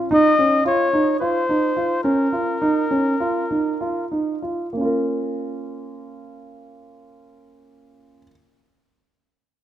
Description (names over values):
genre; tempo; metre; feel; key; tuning
contemporary instrumental, chamber music in an uneven meter; 191-221 BPM (eighths); 9/8; straight; Bb minor; A4 = 435 Hz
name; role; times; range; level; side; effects
dark concert grand piano; arpeggios; 0.0-8.3 s; Bb3 to Bb4; -21 LUFS; right 2 dB; none
clear flugelhorn; melody; 0.1-4.1 s; Bb4 to Eb5; -20 LUFS; left 3 dB; none
room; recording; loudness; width
light reverb; none; -18 LUFS; side -11 dB against mid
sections
0.0-4.7 A section; 4.7-7.5 B section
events
slowing down 0.1-4.7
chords
0.0 Bbm